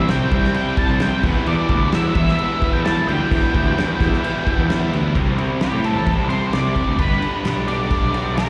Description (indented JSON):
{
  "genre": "classic rock",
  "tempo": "130 BPM",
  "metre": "4/4",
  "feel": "straight",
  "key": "unclear",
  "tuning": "A4 = 440 Hz",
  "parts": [
    { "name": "octave-fuzz lead guitar", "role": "melody", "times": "0.0-8.5 s", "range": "G4 to A5", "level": "-26 LUFS", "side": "equal", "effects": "distortion, slapback echo" },
    { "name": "tonewheel organ", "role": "sustained chords", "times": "0.0-8.5 s", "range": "B3 to C5", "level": "-37 LUFS", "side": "equal", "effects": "none" },
    { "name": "overdriven electric guitar", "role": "riff", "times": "0.0-5.1 s", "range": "C3 to E4", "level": "-29 LUFS", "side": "equal", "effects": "slapback echo" },
    { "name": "raw garage guitar", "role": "riff", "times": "0.0-8.5 s", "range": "E2 to C4", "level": "-28 LUFS", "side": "equal", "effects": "overdrive, slapback echo" },
    { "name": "tight distorted guitar", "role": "riff", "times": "0.0-8.5 s", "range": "E2 to G4", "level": "-30 LUFS", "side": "equal", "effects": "distortion, slapback echo" },
    { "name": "fuzz picked electric bass", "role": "bass", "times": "0.0-8.5 s", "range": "G1 to A2", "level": "-23 LUFS", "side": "equal", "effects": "overdrive" },
    { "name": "damped 70s drum kit", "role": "drums", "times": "0.1-8.5 s", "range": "crash cymbal, kick drum, ride cymbal, snare drum", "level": "-26 LUFS", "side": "equal", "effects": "none" }
  ],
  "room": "light reverb",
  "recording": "live gig heard through the venue's PA, recital hall reverb",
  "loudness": "-19 LUFS",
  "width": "mono",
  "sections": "0.0-5.2 A section; 5.2-8.5 B section",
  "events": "lead electric guitar solo 5.2-8.5",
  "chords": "0.0 Cadd9; 1.2 Em; 5.2 C; 7.0 G",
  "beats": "0.09 0.55 1.01 | 1.47 1.93 2.39 2.85 | 3.31 3.77 4.23 4.69 | 5.15 5.61 6.07 6.53 | 6.99 7.45 7.91 8.37"
}